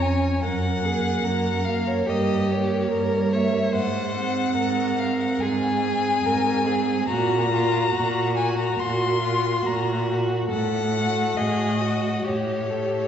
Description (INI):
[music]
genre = classical, slow romantic movement for string quartet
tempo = 71 BPM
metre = 4/4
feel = uneven beats, rubato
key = unclear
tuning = A4 = 439 Hz
[part]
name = rich violin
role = melody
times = 0.0-13.1 s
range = Db5 to C6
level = -26 LUFS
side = left 4 dB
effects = none
[part]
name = warm violin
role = second line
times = 0.0-13.1 s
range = F4 to Db5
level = -28 LUFS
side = left 1 dB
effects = none
[part]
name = rich viola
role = accompaniment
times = 0.0-13.1 s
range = Bb3 to G4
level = -27 LUFS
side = right 3 dB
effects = none
[part]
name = rich cello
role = bass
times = 0.0-13.0 s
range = F2 to Bb2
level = -26 LUFS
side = right 2 dB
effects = none
[sound]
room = wet concert hall reverb, RT60 2.2 s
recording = heard from further back in the room, nothing above 7.9 kHz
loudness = -21 LUFS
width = side -8 dB against mid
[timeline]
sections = 0.0-13.1 A section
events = none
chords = 0.4 Gb; 2.1 Gdim; 3.7 Ab; 7.1 Gb/Bb; 10.5 Gbm/A; 12.2 A7